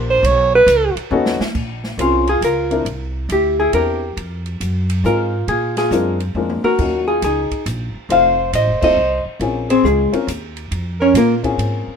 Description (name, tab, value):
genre	jazz, small-group swing and bop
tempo	138 BPM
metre	3/4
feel	swing 66% on 8ths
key	Bb minor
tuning	A4 = 440 Hz
part	dark baby grand piano	accompaniment	0.0-12.0 s	Gb3 to C5	-22 LUFS	left 5 dB	none
part	upright bass	bass	0.0-11.9 s	Eb1 to Bb2	-22 LUFS	equal	none
part	breathy alto saxophone	second line	0.1-11.4 s	Db4 to C#5	-18 LUFS	right 3 dB	none
part	open jazz drum kit	drums	0.2-11.7 s	crash cymbal, hi-hat, kick drum, ride cymbal, snare drum, toms	-28 LUFS	right 1 dB	none
part	vintage hollow-body jazz guitar	melody	2.0-11.3 s	Ab3 to F5	-16 LUFS	left 1 dB	none
room	light reverb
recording	minimal, uncompressed stereo recording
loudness	-15 LUFS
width	side -6 dB against mid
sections	0.0-1.6 A section; 1.6-12.0 B section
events	alto saxophone solo 0.0-1.6; drum fill 1.1-1.6, 6.4-6.8; band accent 5.7, 8.8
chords	0.2 B9; 1.6 Bbm9; 2.9 C7; 4.2 Fm7; 5.5 Bb7; 6.8 Ebm7; 8.1 F7; 9.4 Bbm9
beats	| 0.24 0.68 1.12 | 1.55 1.99 2.43 | 2.86 3.30 3.74 | 4.17 4.61 5.05 | 5.48 5.92 6.36 | 6.79 7.23 7.66 | 8.10 8.54 8.97 | 9.41 9.84 10.28 | 10.72 11.15 11.59